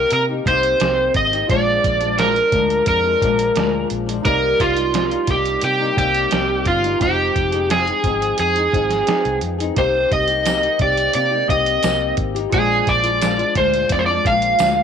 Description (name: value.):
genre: indie pop, bedroom pop.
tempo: 87 BPM.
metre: 4/4.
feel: straight.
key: C minor.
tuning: A4 = 439 Hz.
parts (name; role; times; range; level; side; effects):
overdriven slide guitar; melody; 0.0-14.8 s; F4 to F5; -17 LUFS; right 1 dB; lush chorus, slapback echo.
flamenco guitar; accompaniment; 0.0-14.8 s; Bb2 to Ab4; -24 LUFS; left 12 dB; wide subtle chorus, warbly pitch drift.
warm analog keys; accompaniment; 0.0-14.8 s; Ab3 to G5; -30 LUFS; right 13 dB; chorus, cassette tape.
vintage muted fingered electric bass; bass; 0.0-14.8 s; F1 to C3; -26 LUFS; equal; none.
lo-fi sampler-style drum kit; drums; 0.1-14.8 s; hi-hat, kick drum, snare drum; -24 LUFS; right 3 dB; none.
tambourine; percussion; 10.5-14.8 s; none; -32 LUFS; left 16 dB; none.
room: light reverb.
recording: 1960s-style stereo with parts hard left and right.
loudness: -15 LUFS.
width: side -7 dB against mid.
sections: 0.0-14.8 A section.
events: none.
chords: 0.0 Cm7; 1.5 Bb7; 4.3 Cm7; 7.0 Fm7; 9.8 Cm7; 12.5 Bb7.